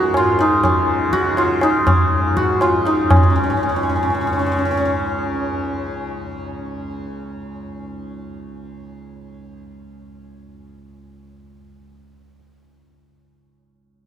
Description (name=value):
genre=indian classical, Hindustani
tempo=122 BPM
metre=4/4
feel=straight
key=Db raga bilaval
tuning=A4 = 439 Hz
part: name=santur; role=melody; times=0.0-8.7 s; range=Db4 to Db5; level=-19 LUFS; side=equal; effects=none
part: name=tanpura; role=drone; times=0.0-11.8 s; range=Db2 to Db3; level=-28 LUFS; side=equal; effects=none
part: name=tabla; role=percussion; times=0.1-3.3 s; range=none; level=-20 LUFS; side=equal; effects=none
room=wet cathedral reverb, RT60 7.0 s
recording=recorded in a church or concert hall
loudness=-15 LUFS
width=side -10 dB against mid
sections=0.0-3.1 A section; 3.1-5.1 B section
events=none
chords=none